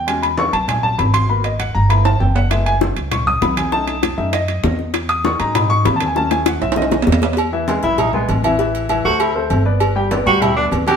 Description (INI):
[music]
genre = Afro-Cuban jazz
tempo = 197 BPM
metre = 4/4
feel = straight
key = unclear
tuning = A4 = 440 Hz
[part]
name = warm baby grand piano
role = accompaniment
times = 0.0-11.0 s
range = D#3 to D#6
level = -19 LUFS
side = left 2 dB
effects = none
[part]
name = upright bass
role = bass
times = 0.0-11.0 s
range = F#1 to G#2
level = -20 LUFS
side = right 1 dB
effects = none
[part]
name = congas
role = percussion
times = 0.1-11.0 s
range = none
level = -25 LUFS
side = left 1 dB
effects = none
[part]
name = timbales and agogo bells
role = percussion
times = 0.1-11.0 s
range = none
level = -23 LUFS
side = right 6 dB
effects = none
[part]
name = bongos and cowbell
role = percussion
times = 2.5-11.0 s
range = none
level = -23 LUFS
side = left 5 dB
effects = none
[part]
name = warm tenor saxophone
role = second line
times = 7.8-11.0 s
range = B3 to G4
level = -18 LUFS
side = right 2 dB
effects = none
[sound]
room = moderate stone room reverb, RT60 1.1 s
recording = band playing live in one room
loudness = -14 LUFS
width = side -7 dB against mid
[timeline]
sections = 0.0-7.4 A section; 7.4-11.0 A section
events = grand piano solo 0.0-7.4; drum fill 2.1-2.5, 6.2-7.4; tenor saxophone solo 7.4-11.0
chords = 0.1 E6; 1.3 G#m9; 1.9 G13; 2.5 F#m11; 3.7 B9; 4.9 Emaj9; 6.2 D#m7b5; 6.8 B13; 7.4 E; 8.6 Am; 9.2 D5; 9.8 G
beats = | 0.08 0.38 0.69 0.99 | 1.29 1.60 1.90 2.21 | 2.51 2.82 3.12 3.42 | 3.73 4.03 4.34 4.64 | 4.94 5.25 5.55 5.86 | 6.16 6.46 6.77 7.07 | 7.37 7.68 7.98 8.29 | 8.59 8.89 9.20 9.50 | 9.81 10.11 10.42 10.72